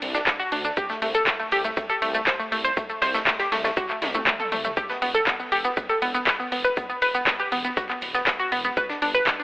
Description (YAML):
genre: progressive house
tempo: 120 BPM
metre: 4/4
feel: straight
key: E minor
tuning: A4 = 444 Hz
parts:
  - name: dark detuned saw bass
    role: bass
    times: 0.0-9.2 s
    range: D1 to D2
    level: -36 LUFS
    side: equal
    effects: tube saturation, sidechain pumping
  - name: house drum kit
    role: drums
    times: 0.0-9.4 s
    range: handclaps, hi-hat, ride cymbal, shaker, toms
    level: -26 LUFS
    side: equal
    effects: overdrive, studio ambience
  - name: vintage brush drum kit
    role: drums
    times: 0.0-9.4 s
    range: hi-hat, snare drum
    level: -33 LUFS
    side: equal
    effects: none
  - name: analog pluck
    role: arpeggios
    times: 0.1-9.4 s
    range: A3 to C5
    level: -23 LUFS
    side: equal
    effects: chorus, sidechain pumping, digital delay
  - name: electronic kick drum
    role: drums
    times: 0.3-9.4 s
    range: none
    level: -29 LUFS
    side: equal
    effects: overdrive, studio ambience
room: light reverb, digital ambience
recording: telephone sound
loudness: -21 LUFS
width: side -20 dB against mid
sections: 0.0-9.4 A section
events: drum fill 4.0-4.8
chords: 0.0 Csus2; 0.8 Am/C; 4.8 E5; 8.8 G5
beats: 0.27 | 0.77 1.27 1.77 2.27 | 2.77 3.27 3.77 4.27 | 4.77 5.27 5.77 6.27 | 6.77 7.27 7.77 8.27 | 8.77 9.27